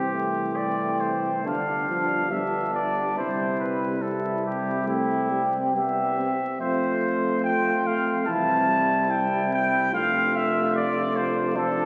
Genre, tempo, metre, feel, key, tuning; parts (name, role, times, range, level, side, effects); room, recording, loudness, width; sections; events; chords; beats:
classical, brass quintet; 71 BPM; 4/4; rubato; C major; A4 = 440 Hz
clear trumpet; melody; 0.0-11.9 s; E4 to A5; -28 LUFS; equal
mellow flugelhorn; second line; 0.0-11.9 s; C4 to G4; -30 LUFS; equal
mellow French horn; accompaniment; 0.0-11.9 s; A3 to D4; -36 LUFS; equal
mellow euphonium; accompaniment; 0.0-11.9 s; D3 to A3; -33 LUFS; equal
warm tuba; bass; 0.0-11.9 s; F1 to F2; -34 LUFS; equal
wet church reverb, RT60 2.6 s; very old 78 rpm record, vinyl crackle; -25 LUFS; mono
0.0-11.9 A section
0.0 C; 1.5 G7; 3.2 C; 6.6 F; 8.3 C; 9.9 F
0.58 1.46 2.32 | 3.17 4.02 4.87 5.75 | 6.59 7.44 8.27 9.10 | 9.93 10.74 11.57